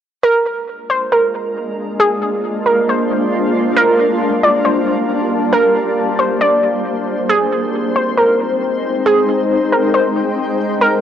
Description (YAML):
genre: hip hop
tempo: 136 BPM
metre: 4/4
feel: half-time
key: unclear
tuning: A4 = 440 Hz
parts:
  - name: warbly dusty pluck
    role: melody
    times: 0.2-11.0 s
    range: Ab4 to D5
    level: -15 LUFS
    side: right 1 dB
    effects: chorus, tape echo
  - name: shimmering ambient pad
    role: sustained chords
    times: 1.0-11.0 s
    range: G3 to G5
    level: -17 LUFS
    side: left 1 dB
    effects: chorus, built-in reverb
room: light reverb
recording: dry, gritty hardware recording, transformer saturation, cassette tape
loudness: -13 LUFS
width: side -9 dB against mid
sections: 0.2-11.0 A section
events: none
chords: 0.2 Bb7; 3.8 Gm7; 7.3 Fm7